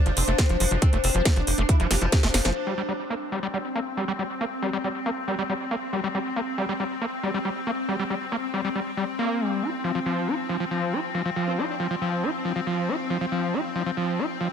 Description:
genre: psychedelic trance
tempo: 138 BPM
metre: 4/4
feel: straight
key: G minor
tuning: A4 = 441 Hz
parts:
  - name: evolving wavetable pad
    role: sustained chords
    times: 0.0-14.5 s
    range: C4 to D4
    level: -30 LUFS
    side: left 2 dB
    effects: ensemble chorus, built-in reverb, sidechain pumping
  - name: oud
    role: melody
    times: 0.1-2.5 s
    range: F3 to G4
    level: -29 LUFS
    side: left 5 dB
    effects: phaser, vintage 12-bit sampler grit, sidechain pumping, low-pass filter, digital delay
  - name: screaming distorted acid line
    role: riff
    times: 0.1-14.5 s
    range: F3 to F4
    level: -27 LUFS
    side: equal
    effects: distortion, chorus, auto-pan, sidechain pumping, tape echo
  - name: tight sequencer bass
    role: bass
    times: 0.1-2.5 s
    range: F1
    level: -25 LUFS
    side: equal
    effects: none
  - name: drum and bass drum kit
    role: drums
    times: 0.1-2.6 s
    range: crash cymbal, hi-hat, snare drum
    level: -26 LUFS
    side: equal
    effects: low-pass filter on snare, low-pass filter on hats, low-pass filter on cymbals, low-pass filter on room
  - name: electronic kick drum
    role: drums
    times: 0.4-2.2 s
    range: none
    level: -20 LUFS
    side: equal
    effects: none
  - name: formant-sweep wobble bass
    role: second line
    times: 11.5-11.8 s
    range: C4 to D4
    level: -38 LUFS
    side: left 3 dB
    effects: analog chorus, sidechain pumping, high-pass filter, digital delay
room: moderate plate reverb, RT60 1.8 s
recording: none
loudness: -23 LUFS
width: side -7 dB against mid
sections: 0.0-2.6 A section; 2.6-14.5 B section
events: drop 0.0-2.6; drum fill 1.9-2.6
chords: 0.0 F5; 2.6 Gsus4; 9.5 F5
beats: 0.39 | 0.82 1.25 1.69 2.12 | 2.56 2.99 3.43 3.86 | 4.30 4.73 5.17 5.60 | 6.04 6.47 6.91 7.34 | 7.78 8.21 8.65 9.08 | 9.52 9.95 10.38 10.82 | 11.26 11.69 12.12 12.56 | 12.99 13.43 13.86 14.30

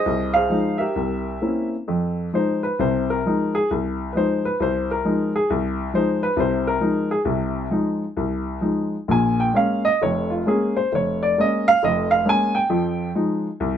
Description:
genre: solo jazz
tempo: 133 BPM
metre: 4/4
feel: swing 66% on 8ths, rubato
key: F minor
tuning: A4 = 439 Hz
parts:
  - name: warm baby grand piano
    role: solo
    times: 0.0-13.8 s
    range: F1 to Ab5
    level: -19 LUFS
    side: equal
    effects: none
room: moderate small room reverb, RT60 0.5 s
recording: band playing live in one room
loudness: -19 LUFS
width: side -9 dB against mid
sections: 0.0-1.9 A section; 1.9-13.8 B section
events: grand piano solo 1.9-13.8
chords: 0.0 Fm7; 1.0 C7b9; 1.9 Fm7; 9.1 Bbm7; 12.7 Fm7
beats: | 0.06 0.51 0.96 1.42 | 1.88 2.34 2.79 3.25 | 3.71 4.16 4.60 5.05 | 5.49 5.93 6.38 6.82 | 7.27 7.72 8.17 8.63 | 9.09 9.55 10.01 10.46 | 10.92 11.37 11.82 12.26 | 12.70 13.15 13.59

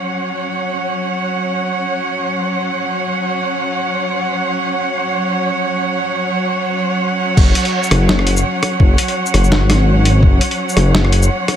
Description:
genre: half-time drum and bass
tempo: 168 BPM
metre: 4/4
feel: swing 56% on 16ths, half-time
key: unclear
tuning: A4 = 441 Hz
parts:
  - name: clear symphonic cello section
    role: sustained chords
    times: 0.0-11.6 s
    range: F#3 to F#5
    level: -17 LUFS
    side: right 1 dB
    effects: vintage 12-bit sampler grit, sidechain pumping
  - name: dark detuned saw bass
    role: bass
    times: 7.4-11.3 s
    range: F#1 to G#1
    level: -13 LUFS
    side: equal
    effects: tube saturation
  - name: boom bap sampler-style drum kit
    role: drums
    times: 7.4-11.6 s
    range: crash cymbal, hi-hat, rim click, shaker, snare drum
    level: -18 LUFS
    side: left 1 dB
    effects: none
  - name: electronic kick drum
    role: drums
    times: 7.4-10.3 s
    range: none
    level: -11 LUFS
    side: equal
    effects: none
room: light reverb, digital ambience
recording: none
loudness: -14 LUFS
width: side -10 dB against mid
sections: 0.0-7.4 A section; 7.4-11.6 B section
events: drop 7.4-11.6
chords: 0.0 F#5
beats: | 0.23 0.58 0.94 1.30 | 1.66 2.01 2.37 2.73 | 3.08 3.44 3.80 4.16 | 4.51 4.87 5.23 5.58 | 5.94 6.30 6.66 7.01 | 7.37 7.73 8.09 8.44 | 8.80 9.16 9.51 9.87 | 10.23 10.59 10.94 11.30

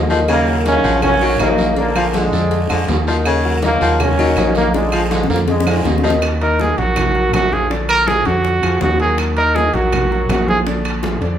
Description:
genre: latin, salsa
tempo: 162 BPM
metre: 4/4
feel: straight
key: Eb minor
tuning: A4 = 440 Hz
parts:
  - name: bright trombone section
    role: melody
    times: 0.0-6.2 s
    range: Db3 to Db4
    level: -18 LUFS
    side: equal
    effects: none
  - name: clear concert grand piano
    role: accompaniment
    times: 0.0-11.4 s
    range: D3 to Gb5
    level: -22 LUFS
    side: left 2 dB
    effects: none
  - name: fingered electric bass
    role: bass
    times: 0.0-11.4 s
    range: Bb1 to F2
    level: -19 LUFS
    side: equal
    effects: none
  - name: clear baritone saxophone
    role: second line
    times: 0.1-6.1 s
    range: Db3 to Gb3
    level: -22 LUFS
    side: left 2 dB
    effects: none
  - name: congas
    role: percussion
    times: 0.1-11.4 s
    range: none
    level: -26 LUFS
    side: left 1 dB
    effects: none
  - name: guiro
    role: percussion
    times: 0.1-6.2 s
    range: none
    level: -32 LUFS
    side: right 3 dB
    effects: none
  - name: agogo bells and timbales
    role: percussion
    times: 0.3-11.4 s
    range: none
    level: -26 LUFS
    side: right 2 dB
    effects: none
  - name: claves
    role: percussion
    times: 0.3-11.0 s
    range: none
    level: -29 LUFS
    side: right 4 dB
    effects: none
  - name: cowbell and bongos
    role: percussion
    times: 0.3-11.4 s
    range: none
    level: -27 LUFS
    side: left 3 dB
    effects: none
  - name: warm trumpet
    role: melody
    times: 6.4-10.6 s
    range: Gb4 to Bb4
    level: -16 LUFS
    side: right 2 dB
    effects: none
room: moderate large studio reverb, RT60 1.1 s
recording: band playing live in one room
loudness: -13 LUFS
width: side -10 dB against mid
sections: 0.0-6.2 A section; 6.2-11.4 B section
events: drum fill 4.7-6.2; trumpet solo 6.2-11.4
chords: 0.3 Ebm7; 1.8 Bb7; 3.3 Ebm7; 4.7 Bb7; 6.2 Ebm; 7.7 Bb7; 9.2 Ebm; 10.7 Bb7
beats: | 0.29 0.66 1.03 1.40 | 1.77 2.14 2.52 2.89 | 3.26 3.63 4.00 4.37 | 4.74 5.12 5.49 5.86 | 6.23 6.60 6.97 7.34 | 7.71 8.08 8.45 8.82 | 9.19 9.56 9.93 10.30 | 10.66 11.03

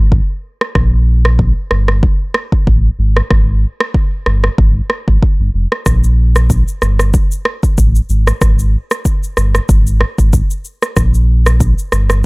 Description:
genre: afrobeats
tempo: 94 BPM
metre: 4/4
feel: swing 55% on 16ths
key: unclear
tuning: A4 = 440 Hz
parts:
  - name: sub bass with octave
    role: bass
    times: 0.0-12.3 s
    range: F1 to Bb1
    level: -11 LUFS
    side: equal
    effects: none
  - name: afro-pop drum kit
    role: drums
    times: 0.1-12.2 s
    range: kick drum, rim click, shaker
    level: -13 LUFS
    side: equal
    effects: none
room: little or no reverb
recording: dry, gritty hardware recording, transformer saturation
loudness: -10 LUFS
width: side -29 dB against mid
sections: 0.0-12.3 A section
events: break 0.0-5.9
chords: none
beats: 0.12 | 0.76 1.39 2.03 2.67 | 3.31 3.95 4.58 5.22 | 5.86 6.50 7.14 7.78 | 8.41 9.05 9.69 10.33 | 10.97 11.61 12.24

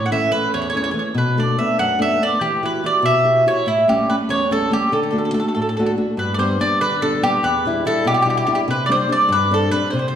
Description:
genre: italian folk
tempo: 96 BPM (dotted quarters)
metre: 6/8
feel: straight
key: D major, G major from 6.2 s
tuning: A4 = 441 Hz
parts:
  - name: mandolin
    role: melody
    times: 0.0-10.1 s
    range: E4 to F#5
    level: -18 LUFS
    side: right 1 dB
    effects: none
  - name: nylon-string guitar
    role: accompaniment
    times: 0.0-10.2 s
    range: E2 to G4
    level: -20 LUFS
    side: left 1 dB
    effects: none
room: wet recital hall reverb, RT60 1.4 s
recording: heard from further back in the room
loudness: -16 LUFS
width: side -9 dB against mid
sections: 0.0-6.2 A section; 6.2-10.2 B section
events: none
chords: 0.0 A; 1.1 Bm7; 2.4 Emadd9; 3.7 A7; 4.9 D; 6.2 G; 7.4 Em7; 8.7 Csus2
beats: 0.51 | 1.15 1.78 | 2.41 3.04 | 3.67 4.29 | 4.91 5.54 | 6.17 6.81 | 7.43 8.05 | 8.67 9.29 | 9.91

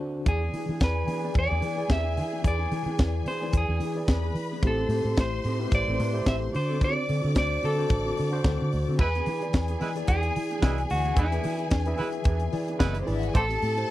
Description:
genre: disco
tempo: 110 BPM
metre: 4/4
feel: swing 56% on 16ths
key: unclear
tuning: A4 = 437 Hz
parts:
  - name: tine electric piano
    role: accompaniment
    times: 0.0-13.9 s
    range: D3 to E5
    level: -33 LUFS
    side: left 3 dB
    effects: medium stereo tremolo
  - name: clean electric guitar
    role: melody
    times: 0.3-13.9 s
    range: E4 to E5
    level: -30 LUFS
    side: equal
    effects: none
  - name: clear symphonic string section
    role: second line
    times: 0.3-13.9 s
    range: A3 to D6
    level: -36 LUFS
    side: left 2 dB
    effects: none
  - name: mellow electric guitar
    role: accompaniment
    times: 0.3-13.9 s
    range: B3 to B4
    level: -37 LUFS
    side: right 3 dB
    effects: lush chorus
  - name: vintage muted fingered electric bass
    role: bass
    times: 0.3-13.8 s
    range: F#1 to E3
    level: -29 LUFS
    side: equal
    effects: none
  - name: tight funk drum kit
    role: drums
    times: 0.3-13.9 s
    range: crash cymbal, hi-hat, kick drum, snare drum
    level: -24 LUFS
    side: equal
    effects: none
  - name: clear horn section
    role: stabs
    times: 9.0-13.4 s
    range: G#3 to C5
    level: -32 LUFS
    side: right 5 dB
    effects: none
room: little or no reverb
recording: dry, close 1970s-style studio recording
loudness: -24 LUFS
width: side -15 dB against mid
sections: 0.3-9.0 A section; 9.0-13.9 B section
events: band accent 0.0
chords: 0.3 E7; 4.6 Am7; 6.5 D7; 9.0 E7; 13.4 Am7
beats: | 0.26 0.81 1.35 1.90 | 2.44 2.99 3.53 4.08 | 4.62 5.17 5.71 6.26 | 6.81 7.35 7.90 8.44 | 8.99 9.53 10.08 10.62 | 11.17 11.71 12.26 12.81 | 13.35 13.90

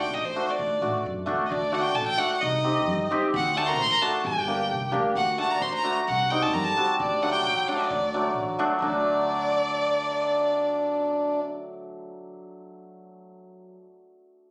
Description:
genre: klezmer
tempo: 131 BPM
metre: 2/4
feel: straight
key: D phrygian dominant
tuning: A4 = 439 Hz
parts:
  - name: rich violin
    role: melody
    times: 0.0-11.4 s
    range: C5 to C6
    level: -29 LUFS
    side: equal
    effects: plate reverb
  - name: mellow accordion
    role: second line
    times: 0.0-11.4 s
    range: C4 to D5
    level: -32 LUFS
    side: equal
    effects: none
  - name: upright bass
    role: bass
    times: 0.0-12.1 s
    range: G1 to A2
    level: -38 LUFS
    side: equal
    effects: none
  - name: hammered dulcimer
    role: accompaniment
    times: 0.4-13.7 s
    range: F#3 to G4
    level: -31 LUFS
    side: equal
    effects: none
room: moderate small room reverb, RT60 0.6 s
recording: recorded on a phone in the room, studio reverb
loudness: -25 LUFS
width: mono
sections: 0.0-1.5 A section; 1.5-8.8 A section; 8.8-10.6 B section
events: none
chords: 0.0 D; 2.4 Cm; 3.3 D; 4.2 Gm; 5.2 D; 6.1 C5; 7.0 D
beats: 0.12 | 0.58 1.04 | 1.50 1.96 | 2.42 2.88 | 3.33 3.79 | 4.25 4.71 | 5.16 5.62 | 6.08 6.53 | 6.99 7.45 | 7.90 8.36 | 8.81 9.27 | 9.73 10.18

